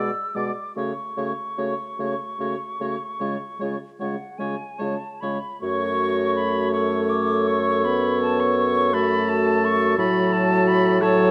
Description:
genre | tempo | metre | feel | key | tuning
classical, slow romantic movement for wind quintet | 47-58 BPM (dotted quarters) | 12/8 | rubato | F# minor | A4 = 440 Hz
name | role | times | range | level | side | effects
hollow concert flute | melody | 0.0-11.3 s | F#5 to E6 | -30 LUFS | equal | none
warm oboe | second line | 0.0-11.3 s | A4 to D5 | -30 LUFS | equal | none
mellow French horn | accompaniment | 0.0-11.3 s | F#3 to B3 | -28 LUFS | equal | none
mellow clarinet | accompaniment | 0.0-11.3 s | E#4 to A4 | -30 LUFS | equal | none
mellow bassoon | bass | 0.0-11.3 s | F#2 to C#3 | -29 LUFS | equal | none
room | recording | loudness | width
moderate recital hall reverb, RT60 1.4 s | close, detailed microphones | -23 LUFS | mono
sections
0.0-5.6 A section; 5.6-11.3 B section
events
none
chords
0.0 G#dim/B; 0.8 F#m/C#; 3.2 C#; 5.6 F#m; 10.0 F#m/A

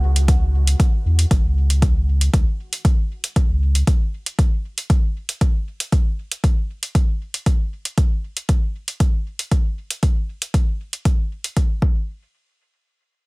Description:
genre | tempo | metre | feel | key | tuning
dub techno | 117 BPM | 4/4 | straight | unclear | A4 = 440 Hz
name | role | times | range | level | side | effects
warm sub bass | bass | 0.0-3.8 s | G#1 to E2 | -16 LUFS | equal | sidechain pumping
electronic hi-hat | drums | 0.2-11.7 s | none | -25 LUFS | right 1 dB | none
electronic kick drum | drums | 0.3-11.9 s | none | -17 LUFS | equal | overdrive
room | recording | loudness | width
digital ambience | none | -17 LUFS | side -26 dB against mid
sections
0.0-12.1 A section; 12.1-13.3 B section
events
none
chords
none

